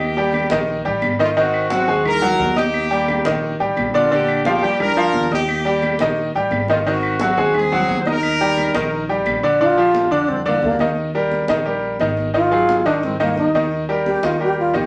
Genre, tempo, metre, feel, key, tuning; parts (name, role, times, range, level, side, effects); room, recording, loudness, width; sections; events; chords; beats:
latin, salsa; 175 BPM; 4/4; straight; A4 = 441 Hz
mellow horn section; melody; 0.0-9.1 s; A3 to C5; -24 LUFS; equal
bright grand piano; accompaniment; 0.0-14.9 s; D3 to Eb6; -21 LUFS; equal
upright bass; bass; 0.0-14.9 s; Ab1 to Ab2; -32 LUFS; equal
congas; percussion; 0.2-14.9 s; -30 LUFS; equal
claves; percussion; 0.3-9.4 s; -30 LUFS; equal
wooden-headed alto flute; melody; 9.6-14.9 s; Bb3 to G4; -20 LUFS; equal
wet small room reverb, RT60 0.6 s; -18 LUFS; mono
0.0-9.6 A section; 9.6-14.9 B section
alto flute solo 9.6-14.9
0.0 Eb; 1.4 Ab7; 2.7 Eb; 4.1 Bb6; 5.5 Eb; 6.9 Ab7; 8.2 Eb; 9.6 Bb6; 11.0 Eb; 12.3 Ab5; 13.7 Eb
| 0.00 0.34 0.68 1.02 | 1.37 1.71 2.05 2.40 | 2.74 3.08 3.43 3.77 | 4.11 4.46 4.80 5.14 | 5.49 5.83 6.17 6.52 | 6.86 7.20 7.54 7.89 | 8.23 8.57 8.91 9.26 | 9.60 9.94 10.29 10.63 | 10.97 11.31 11.66 12.00 | 12.34 12.69 13.03 13.37 | 13.71 14.06 14.40 14.74